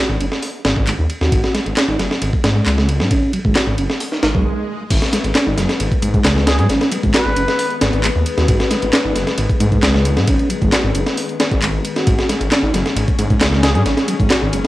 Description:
breakbeat, breaks; 134 BPM; 4/4; straight; G# minor pentatonic; A4 = 441 Hz
mellow tonewheel organ; riff; 0.0-14.6 s; F#3 to F#4; -21 LUFS; right 1 dB; fast rotary speaker, cassette tape, analog delay
detuned saw bass; bass; 0.1-14.6 s; F#1 to G#2; -19 LUFS; equal
breakbeat sampler-style drum kit; drums; 0.2-14.7 s; crash cymbal, hi-hat, kick drum, ride cymbal, snare drum; -17 LUFS; equal; cassette tape
house drum kit; drums; 0.9-14.7 s; handclaps, hi-hat; -24 LUFS; equal; cassette tape
swell; sound effects; 4.1-4.9 s; -25 LUFS; right 4 dB
dark studio string section; sustained chords; 4.9-14.7 s; D#3 to C#4; -25 LUFS; left 6 dB; sidechain pumping, cassette tape
trumpet with plunger mute; melody; 6.5-7.8, 13.6-13.8 s; G#4 to B4; -23 LUFS; equal; old record sound, cassette tape, analog delay
moderate studio ambience, RT60 0.5 s; home recording on cassette; -14 LUFS; side -16 dB against mid
0.0-4.9 A section; 4.9-14.7 B section
swell 4.1-4.9; stop 4.5-4.9; drop 4.9-14.7
0.0 N.C.; 4.9 G#m
0.42 0.87 | 1.32 1.77 2.22 2.66 | 3.11 3.56 4.01 4.46 | 4.90 5.35 5.80 6.25 | 6.69 7.14 7.59 8.04 | 8.48 8.93 9.38 9.83 | 10.28 10.72 11.17 11.62 | 12.07 12.52 12.96 13.41 | 13.86 14.31

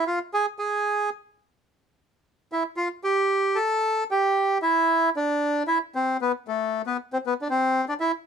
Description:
tango; 114 BPM; 4/4; rubato; A minor; A4 = 440 Hz
bandoneon; solo; 0.0-8.1 s; A3 to A4; -22 LUFS; right 1 dB
light reverb; -22 LUFS; side -7 dB against mid
0.0-8.3 A section
| 0.35 0.88 1.41 1.95 | 2.48 3.02 3.55 4.07 | 4.60 5.12 5.64 6.17 | 6.69 7.21 7.73

